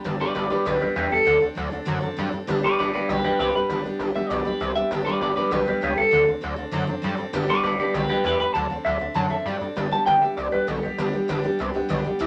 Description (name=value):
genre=rockabilly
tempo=198 BPM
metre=4/4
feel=straight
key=G major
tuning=A4 = 442 Hz
part: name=electric guitar through a small old amp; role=melody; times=0.0-11.4 s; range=G4 to A5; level=-24 LUFS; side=equal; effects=phaser
part: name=picked steel-string acoustic guitar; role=accompaniment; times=0.0-12.3 s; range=G2 to A4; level=-29 LUFS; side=equal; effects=none
part: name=gritty driven synth bass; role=bass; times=0.1-12.3 s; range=G1 to G2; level=-31 LUFS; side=equal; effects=distortion
room=moderate studio reverb, RT60 0.6 s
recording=none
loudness=-23 LUFS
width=mono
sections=0.1-9.8 A section; 9.8-12.3 B section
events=none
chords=0.1 G; 1.3 D7; 2.5 G; 6.1 D7; 7.3 G; 8.6 D7; 9.8 G